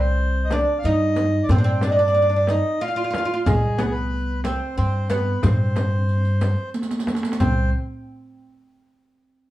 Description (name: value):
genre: Arabic maqam ensemble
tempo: 61 BPM (dotted quarters)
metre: 6/8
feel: straight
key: C maqam nahawand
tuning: A4 = 441 Hz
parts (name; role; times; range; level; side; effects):
- oud; melody; 0.0-7.7 s; Ab3 to F4; -23 LUFS; right 2 dB; plate reverb
- accordion; second line; 0.0-7.7 s; Ab4 to F5; -27 LUFS; left 1 dB; none
- upright bass; bass; 0.0-7.7 s; C2 to G2; -22 LUFS; equal; none
- darbuka; percussion; 0.2-7.7 s; none; -27 LUFS; equal; none
- frame drum; percussion; 0.5-7.7 s; none; -26 LUFS; left 1 dB; none
- riq; percussion; 0.5-7.7 s; none; -29 LUFS; right 2 dB; none
room: wet studio reverb, RT60 0.6 s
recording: heard from further back in the room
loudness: -18 LUFS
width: side -15 dB against mid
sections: 0.0-7.4 A section; 7.4-9.4 B section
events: drum fill 6.7-7.4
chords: none